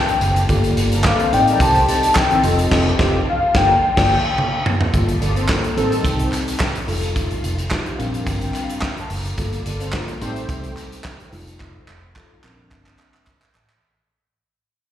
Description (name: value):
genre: early-eighties boogie funk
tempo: 108 BPM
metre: 4/4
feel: straight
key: G minor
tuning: A4 = 441 Hz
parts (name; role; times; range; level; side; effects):
- warm velvety synth lead; melody; 0.0-4.6 s; F5 to A5; -17 LUFS; left 3 dB; chorus, slapback echo
- warm studio string section; sustained chords; 0.0-13.8 s; D3 to A4; -30 LUFS; equal; none
- modern studio drum kit; drums; 0.1-13.8 s; crash cymbal, handclaps, hi-hat, kick drum, snare drum, toms; -21 LUFS; equal; none
- vintage muted fingered electric bass; bass; 0.2-13.8 s; F1 to C2; -22 LUFS; equal; none
- mellow tine electric piano; accompaniment; 0.5-13.4 s; G3 to Bb5; -24 LUFS; left 2 dB; analog chorus, slapback echo
- mellow synth brass; second line; 0.9-6.3, 9.7-10.7 s; Eb3 to D5; -25 LUFS; right 1 dB; chorus, slapback echo
- group handclap; percussion; 1.1-13.4 s; none; -32 LUFS; right 1 dB; none
room: light reverb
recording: live gig heard through the venue's PA, recital hall reverb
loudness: -16 LUFS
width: side -11 dB against mid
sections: 0.0-4.9 A section; 4.9-13.8 B section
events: band accent 2.7-4.9; drum fill 4.4-4.9, 11.6-13.8; fade-out 4.9-13.8; tine electric piano fill 7.7-9.4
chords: 0.5 Gm9; 1.3 Am7b5; 2.4 F9; 3.5 Gm9; 5.8 Am7b5; 6.9 F9; 8.0 Bb69; 9.4 Gm9; 10.2 Am7b5; 11.3 F9; 12.4 Bb69